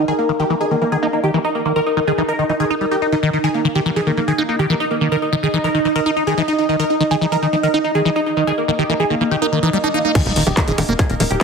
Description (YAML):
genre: psychedelic trance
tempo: 143 BPM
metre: 4/4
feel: straight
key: unclear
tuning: A4 = 437 Hz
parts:
  - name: supersaw stab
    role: melody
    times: 0.0-11.4 s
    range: Bb3 to Bb4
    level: -20 LUFS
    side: right 1 dB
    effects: phaser, sidechain pumping, ping-pong delay
  - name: evolving wavetable pad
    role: sustained chords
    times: 0.0-11.4 s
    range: Eb4 to Eb5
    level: -22 LUFS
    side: right 2 dB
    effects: chorus, built-in reverb, sidechain pumping
  - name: liquid acid bass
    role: riff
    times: 0.0-11.4 s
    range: Eb3 to Eb4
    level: -19 LUFS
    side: equal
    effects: phaser, auto-pan, sidechain pumping, ping-pong delay
  - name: electronic kick drum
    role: drums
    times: 10.2-11.4 s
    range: none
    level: -18 LUFS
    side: equal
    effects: distortion, studio reverb
  - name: techno drum kit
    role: drums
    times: 10.2-11.4 s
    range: bongos, crash cymbal, handclaps, hi-hat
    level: -22 LUFS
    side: equal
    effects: studio reverb
  - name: sub drop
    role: sound effects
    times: 10.2-11.4 s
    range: none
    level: -30 LUFS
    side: left 1 dB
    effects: none
  - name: tight sequencer bass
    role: bass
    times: 10.3-11.4 s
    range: Eb1 to Fb1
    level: -21 LUFS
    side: equal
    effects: none
room: wet plate reverb, RT60 1.3 s, digital ambience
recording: heavily compressed radio sound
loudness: -15 LUFS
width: side -5 dB against mid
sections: 0.0-10.2 A section; 10.2-11.4 B section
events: filter sweep on ambient pad 0.0-10.2; drop 10.2-11.4; impact 10.2-11.4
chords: 0.0 Eb5